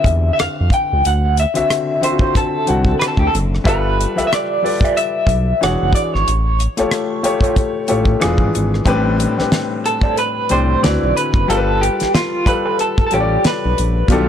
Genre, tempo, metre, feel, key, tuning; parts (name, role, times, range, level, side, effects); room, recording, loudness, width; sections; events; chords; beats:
R&B, neo-soul; 92 BPM; 4/4; swing 58% on 16ths; A4 = 440 Hz
electric guitar through a small old amp; melody; 0.0-14.1 s; F4 to G5; -19 LUFS; right 1 dB; tremolo, slapback echo
warm baby grand piano; accompaniment; 0.0-14.3 s; A2 to F#5; -19 LUFS; left 4 dB
damped 70s drum kit; drums; 0.0-14.3 s; hi-hat, kick drum, rim click, snare drum; -18 LUFS; equal; soft clipping on kick, soft clipping on snare
smooth gliding synth bass; bass; 0.1-14.3 s; E1 to F2; -18 LUFS; equal
electric guitar through a small old amp; second line; 2.2-12.8 s; E4 to E5; -28 LUFS; right 5 dB; wah
clear horn section; stabs; 14.1-14.3 s; D3 to F4; -23 LUFS; right 6 dB
small room ambience; blown-out, overdriven recording, overdrive; -14 LUFS; side -9 dB against mid
0.0-8.9 A section; 8.9-14.3 B section
clean electric guitar solo 8.9-14.3
0.0 Dm11; 1.0 D9; 3.7 G13; 5.6 E13; 6.3 Aaug7; 8.2 E7b9; 8.9 Am11; 10.8 D13; 11.5 G9
0.39 | 1.04 1.70 2.35 3.00 | 3.65 4.31 4.96 5.61 | 6.26 6.92 7.57 8.22 | 8.87 9.52 10.18 10.83 | 11.48 12.13 12.78 13.44 | 14.09